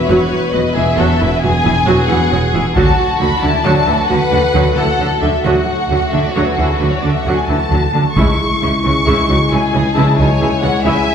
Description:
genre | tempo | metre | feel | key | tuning
cinematic, epic orchestral film score | 90 BPM (dotted quarters) | 12/8 | straight | unclear | A4 = 440 Hz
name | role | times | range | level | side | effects
warm symphonic violin section | melody | 0.0-11.1 s | G#4 to C#6 | -18 LUFS | left 3 dB | none
warm symphonic violin section | second line | 0.0-11.1 s | D4 to E5 | -20 LUFS | left 3 dB | none
mellow French horn section | sustained chords | 0.0-11.1 s | G#3 to F#4 | -21 LUFS | left 2 dB | none
warm symphonic viola section | accompaniment | 0.1-11.1 s | D3 to F#4 | -19 LUFS | right 1 dB | none
clear symphonic cello section | bass | 0.1-10.9 s | E2 to D3 | -20 LUFS | right 2 dB | none
rich symphonic double bass section | bass | 0.1-10.9 s | E1 to D2 | -18 LUFS | right 2 dB | none
taiko ensemble | drums | 2.8-3.6, 8.2-9.0 s | none | -19 LUFS | equal | none
room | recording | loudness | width
wet recital hall reverb, RT60 1.4 s | heard from further back in the room | -12 LUFS | side -7 dB against mid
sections
0.0-11.1 A section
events
none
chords
0.0 Eadd9; 2.8 D; 8.2 C#m

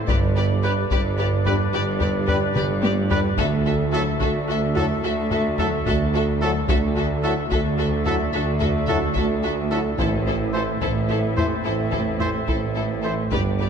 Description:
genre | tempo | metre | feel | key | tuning
cinematic, epic orchestral film score | 73 BPM (dotted quarters) | 12/8 | straight | A dorian | A4 = 438 Hz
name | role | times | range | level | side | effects
mellow woodwind section | sustained chords | 0.0-13.7 s | B3 to G5 | -29 LUFS | left 1 dB | none
warm symphonic violin section | melody | 0.1-13.7 s | C5 to E5 | -32 LUFS | left 3 dB | none
clear symphonic violin section | second line | 0.1-13.7 s | A4 to B4 | -32 LUFS | left 4 dB | none
rich symphonic viola section | accompaniment | 0.1-13.7 s | E4 to G4 | -31 LUFS | right 1 dB | none
rich symphonic cello section | bass | 0.1-13.7 s | D2 to A2 | -26 LUFS | right 2 dB | none
rich symphonic double bass section | bass | 0.1-13.7 s | G1 to D2 | -27 LUFS | right 3 dB | none
warm tuba | bass | 0.1-13.7 s | G1 to D2 | -28 LUFS | right 3 dB | none
taiko ensemble | drums | 0.1-13.7 s | none | -27 LUFS | left 2 dB | none
mellow French horn section | sustained chords | 0.6-13.1 s | E3 to E4 | -31 LUFS | left 5 dB | none
clear trumpet | stabs | 0.6-13.1 s | A4 to C5 | -31 LUFS | right 1 dB | none
timpani | percussion | 10.0-10.8 s | A2 | -32 LUFS | left 1 dB | none
reverse cymbal | sound effects | 13.3-13.7 s | none | barely audible | none | none
room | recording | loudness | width
moderate scoring stage reverb, RT60 1.5 s | dark, warm production | -19 LUFS | side -7 dB against mid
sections
0.0-13.7 A section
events
drum fill 2.6-3.4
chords
0.1 G; 3.4 Dadd9; 10.0 Am

